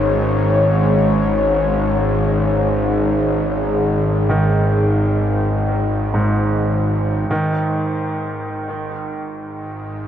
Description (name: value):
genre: dark ambient drone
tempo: free time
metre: none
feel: none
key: unclear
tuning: A4 = 439 Hz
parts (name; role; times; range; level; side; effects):
- dark analog pad; sustained chords; 0.0-7.3 s; G#3 to C#5; -21 LUFS; left 2 dB; chorus
- bright grand piano; arpeggios; 0.0-10.1 s; G#2 to D#3; -21 LUFS; right 1 dB; diffuse ambient delay
- bowed-like drone; drone; 0.0-10.1 s; G#1 to G#2; -18 LUFS; equal; built-in reverb
room: wet huge ambient reverb, RT60 9.2 s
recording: worn, warbling old tape, cassette tape, warbly pitch drift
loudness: -16 LUFS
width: side -10 dB against mid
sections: 0.0-7.3 A section; 7.3-10.1 B section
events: none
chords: 0.0 G#5